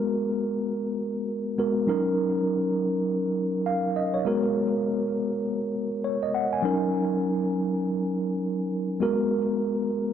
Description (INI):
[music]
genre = R&B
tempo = 101 BPM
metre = 4/4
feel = swing 61% on 16ths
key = Eb minor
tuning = A4 = 439 Hz
[part]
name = mellow tine electric piano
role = solo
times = 0.0-10.1 s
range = Gb3 to Ab5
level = -24 LUFS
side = equal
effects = medium stereo tremolo, tape echo
[sound]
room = wet plate reverb, RT60 2.9 s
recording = dark, warm production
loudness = -24 LUFS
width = side -8 dB against mid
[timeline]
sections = 0.0-10.1 A section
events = none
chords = 0.0 Abm9; 1.9 Ebm7; 4.3 Abm9; 6.6 Ebm7; 9.0 Abm9